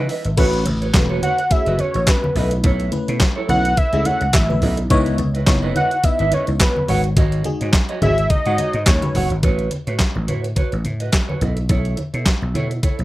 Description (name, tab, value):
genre	early-eighties boogie funk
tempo	106 BPM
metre	4/4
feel	swing 56% on 16ths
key	unclear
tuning	A4 = 438 Hz
part	FM electric piano with soft pad layer	accompaniment	0.0-9.2 s	G#3 to E5	-25 LUFS	left 3 dB	chorus, phaser
part	mellow electric guitar	riff	0.0-13.0 s	E4 to F#5	-25 LUFS	right 4 dB	lush chorus
part	vintage slap bass	bass	0.0-13.0 s	E1 to B2	-21 LUFS	equal	none
part	crisp 8-bit digital drum machine	drums	0.1-13.0 s	crash cymbal, handclaps, hi-hat, kick drum, snare drum	-18 LUFS	equal	none
part	congas	percussion	0.4-13.0 s	none	-26 LUFS	equal	none
part	fat analog lead	melody	1.2-9.3 s	B4 to F#5	-20 LUFS	equal	chorus, slapback echo
room	light reverb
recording	rough home demo mix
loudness	-16 LUFS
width	side -17 dB against mid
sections	0.4-9.4 A section; 9.4-13.0 B section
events	FM electric piano fill 0.0-0.4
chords	0.4 A69; 2.4 B9sus4; 4.9 C#m9; 6.9 G#7sus4; 9.4 A69; 11.4 B9sus4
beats	| 0.38 0.94 1.51 2.07 | 2.64 3.21 3.77 4.34 | 4.90 5.47 6.04 6.60 | 7.17 7.73 8.30 8.87 | 9.43 10.00 10.56 11.13 | 11.70 12.26 12.83